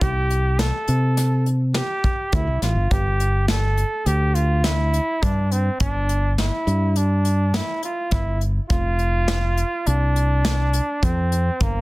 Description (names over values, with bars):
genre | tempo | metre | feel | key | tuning
progressive instrumental, band music in an uneven meter | 104 BPM | 5/4 | straight | unclear | A4 = 435 Hz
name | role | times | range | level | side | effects
clear flugelhorn | second line | 0.0-11.8 s | Bb3 to A4 | -24 LUFS | right 1 dB | none
fingered electric bass | bass | 0.0-11.8 s | F1 to C3 | -20 LUFS | equal | none
soft brush drum kit | drums | 0.0-11.7 s | hi-hat, kick drum, snare drum | -24 LUFS | equal | soft clipping on snare
room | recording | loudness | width
small room reverb | dense, heavily limited modern master | -18 LUFS | side -20 dB against mid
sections
0.0-11.8 A section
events
none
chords
0.0 C5; 2.9 G5; 8.7 F5